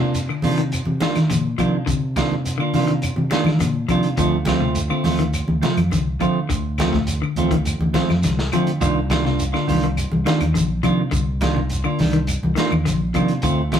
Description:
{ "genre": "afrobeat", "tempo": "104 BPM", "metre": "4/4", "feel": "straight", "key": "C dorian", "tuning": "A4 = 441 Hz", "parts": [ { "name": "clean electric guitar", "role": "arpeggios", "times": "0.0-13.6 s", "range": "A2 to F3", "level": "-24 LUFS", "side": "left 5 dB", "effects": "none" }, { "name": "semi-hollow electric guitar", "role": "stabs", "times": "0.0-13.8 s", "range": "Eb3 to F4", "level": "-23 LUFS", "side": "right 4 dB", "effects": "spring reverb" }, { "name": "fingered electric bass", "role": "bass", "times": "0.0-13.8 s", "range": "Bb1 to Eb3", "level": "-23 LUFS", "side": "equal", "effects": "none" }, { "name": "congas", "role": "percussion", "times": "0.0-13.8 s", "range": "none", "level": "-25 LUFS", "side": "left 1 dB", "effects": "none" }, { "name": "crunchy breakbeat drum kit", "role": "drums", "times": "0.1-13.8 s", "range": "hi-hat, kick drum, snare drum", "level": "-27 LUFS", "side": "equal", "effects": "none" }, { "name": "shekere", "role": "percussion", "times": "0.1-13.8 s", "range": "none", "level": "-30 LUFS", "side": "right 1 dB", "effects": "none" }, { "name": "claves", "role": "percussion", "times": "0.3-13.8 s", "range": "none", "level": "-34 LUFS", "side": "left 3 dB", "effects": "none" } ], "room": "moderate studio reverb, RT60 0.6 s", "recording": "rough rehearsal-room recording", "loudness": "-17 LUFS", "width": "side -9 dB against mid", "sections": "0.0-13.8 A section", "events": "none", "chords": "0.0 Cm11; 4.2 Dm7; 8.8 Cm11" }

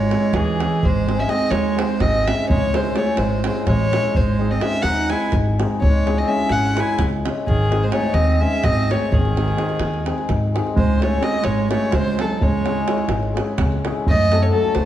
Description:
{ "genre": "balkan folk, Balkan wedding band", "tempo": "254 BPM (eighths)", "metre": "7/8", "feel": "straight", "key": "unclear", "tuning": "A4 = 440 Hz", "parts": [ { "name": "dark fiddle", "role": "melody", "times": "0.0-14.9 s", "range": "G#4 to G#5", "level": "-23 LUFS", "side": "equal", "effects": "none" }, { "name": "clear clarinet", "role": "second line", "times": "0.0-14.9 s", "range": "D#3 to E4", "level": "-24 LUFS", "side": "right 5 dB", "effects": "none" }, { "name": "cimbalom", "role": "accompaniment", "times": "0.0-14.7 s", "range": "G#3 to A4", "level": "-24 LUFS", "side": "left 4 dB", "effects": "none" }, { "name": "upright bass", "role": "bass", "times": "0.0-14.9 s", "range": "G#1 to G#2", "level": "-22 LUFS", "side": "left 1 dB", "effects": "none" }, { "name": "davul", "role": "percussion", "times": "0.1-14.9 s", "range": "none", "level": "-24 LUFS", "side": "right 1 dB", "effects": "none" } ], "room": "wet recital hall reverb, RT60 1.7 s", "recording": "none", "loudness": "-17 LUFS", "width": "side -12 dB against mid", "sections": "0.0-10.8 A section; 10.8-14.9 B section", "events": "none", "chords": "0.0 C#m; 0.8 G#; 2.5 C#m; 4.2 G#; 5.8 C#m; 7.5 G#; 10.8 C#m; 14.1 F#m" }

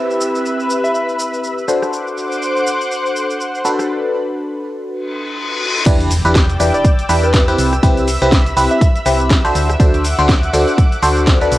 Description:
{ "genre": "piano house", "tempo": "122 BPM", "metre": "4/4", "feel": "swing 58% on 16ths", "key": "unclear", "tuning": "A4 = 440 Hz", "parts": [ { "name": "analog string pad", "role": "sustained chords", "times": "0.0-11.6 s", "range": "B4 to E6", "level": "-22 LUFS", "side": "equal", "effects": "ensemble chorus, vintage 12-bit sampler grit, sidechain pumping, cassette tape" }, { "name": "barking FM electric piano", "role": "riff", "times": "0.0-11.6 s", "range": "C4 to C5", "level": "-17 LUFS", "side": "equal", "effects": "phaser, cassette tape, sidechain pumping, tape echo" }, { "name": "downlifter, reverse cymbal and impact", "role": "sound effects", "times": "5.1-7.8 s", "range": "none", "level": "-24 LUFS", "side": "left 2 dB", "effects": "none" }, { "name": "house drum kit", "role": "drums", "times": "0.1-11.6 s", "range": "crash cymbal, hi-hat, rim click, shaker, snare drum", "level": "-22 LUFS", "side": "equal", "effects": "overdrive, small room ambience, cassette tape" }, { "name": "soft struck synth lead", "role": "melody", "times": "0.8-1.0, 6.7-8.9 s", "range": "B4 to E5", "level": "-23 LUFS", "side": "equal", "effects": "chorus, cassette tape, tape echo" }, { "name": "solid FM bass", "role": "bass", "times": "5.9-11.6 s", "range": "B1 to E2", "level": "-18 LUFS", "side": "equal", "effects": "sidechain pumping" }, { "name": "electronic kick drum", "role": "drums", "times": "5.9-11.4 s", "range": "none", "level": "-12 LUFS", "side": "equal", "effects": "overdrive, small room ambience, cassette tape" } ], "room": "moderate spring reverb, RT60 1.7 s", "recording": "home recording on cassette", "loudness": "-13 LUFS", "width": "side -16 dB against mid", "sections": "0.0-5.9 A section; 5.9-11.6 B section", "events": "reverse cymbal 5.1-5.9; drop 5.9-11.6; impact 5.9-7.8", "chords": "0.0 Cmaj7; 1.7 D7; 3.6 Bm7; 5.9 Em7; 7.6 Cmaj7; 9.6 D7" }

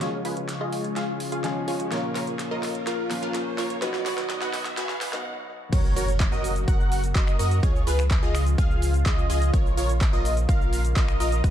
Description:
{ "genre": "EDM, festival progressive house", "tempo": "126 BPM", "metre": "4/4", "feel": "straight", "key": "F# major", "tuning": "A4 = 440 Hz", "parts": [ { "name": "dark baby grand piano", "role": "accompaniment", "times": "0.0-5.7 s", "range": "A#2 to G#4", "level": "-32 LUFS", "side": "left 1 dB", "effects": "sidechain pumping, tape echo" }, { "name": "lush unison pad", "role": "sustained chords", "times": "0.0-11.5 s", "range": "C#3 to D#5", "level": "-34 LUFS", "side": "left 1 dB", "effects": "chorus, phaser, sidechain pumping" }, { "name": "supersaw stab", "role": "riff", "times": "0.0-11.5 s", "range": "E#4 to G#5", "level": "-30 LUFS", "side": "equal", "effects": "sidechain pumping, low-pass filter, tape echo" }, { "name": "big-room dance drum kit", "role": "drums", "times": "0.0-11.5 s", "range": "crash cymbal, finger snaps, handclaps, hi-hat, shaker, snare drum", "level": "-34 LUFS", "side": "equal", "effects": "overdrive, high-pass filter on snare, high-pass filter on hats, high-pass filter on cymbals, high-pass filter on perc" }, { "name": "riser and impact", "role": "sound effects", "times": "0.3-7.6 s", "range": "none", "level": "-37 LUFS", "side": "equal", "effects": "none" }, { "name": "wide unison lead", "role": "arpeggios", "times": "5.7-11.5 s", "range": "B4 to F#5", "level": "-32 LUFS", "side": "equal", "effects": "ensemble chorus, sidechain pumping, tape echo" }, { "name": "saturated sub bass", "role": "bass", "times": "5.7-11.5 s", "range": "F#1 to F#2", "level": "-25 LUFS", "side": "equal", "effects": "sidechain pumping" }, { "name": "electronic kick drum", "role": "drums", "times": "5.7-11.5 s", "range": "none", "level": "-22 LUFS", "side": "equal", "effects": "overdrive" } ], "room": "light reverb", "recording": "dark, warm production, high-pass filter", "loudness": "-22 LUFS", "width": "side -11 dB against mid", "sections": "0.0-5.7 A section; 5.7-11.5 B section", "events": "build-up 0.0-5.7; drum fill 0.0-5.2; filter sweep on supersaw synth 0.0-5.7; filter sweep 0.0-5.7; riser 0.3-5.2; break 5.2-5.7; drop 5.7-11.5; impact 5.7-7.6", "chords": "0.0 C#; 1.9 A#m; 3.8 B; 5.7 F#; 7.6 C#; 9.5 A#m" }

